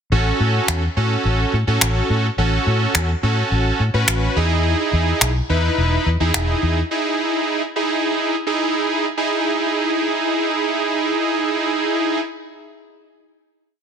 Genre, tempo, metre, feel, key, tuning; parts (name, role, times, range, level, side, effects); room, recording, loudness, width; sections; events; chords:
dance-pop; 106 BPM; 4/4; straight; E major; A4 = 440 Hz
big bright polysynth; accompaniment; 0.1-12.2 s; C#4 to B4; -19 LUFS; right 2 dB
vintage muted fingered electric bass; bass; 0.1-6.8 s; E1 to A2; -19 LUFS; left 1 dB
electronic finger snaps; drums; 0.7-6.5 s; -21 LUFS; equal; overdrive, soft clipping on snare
light reverb; dense, heavily limited modern master; -17 LUFS; side -7 dB against mid
0.1-9.2 verse; 9.2-11.4 final chord
0.1 A6; 4.4 Emaj7